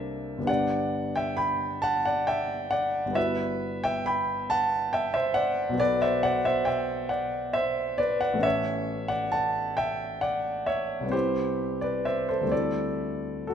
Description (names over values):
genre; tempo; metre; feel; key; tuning
classical, impressionist solo piano; 45 BPM (dotted quarters); 6/8; rubato; G major; A4 = 440 Hz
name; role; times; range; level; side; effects
clear grand piano; solo; 0.0-13.5 s; G1 to B5; -25 LUFS; equal; none
room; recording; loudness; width
moderate recital hall reverb, RT60 1.7 s; minimal, uncompressed stereo recording; -25 LUFS; side -8 dB against mid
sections
0.0-13.5 A section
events
none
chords
0.5 Gmaj7; 3.2 Emadd9/G; 5.8 Bm7; 8.4 Aadd9; 11.1 Cmaj7; 12.5 D9sus4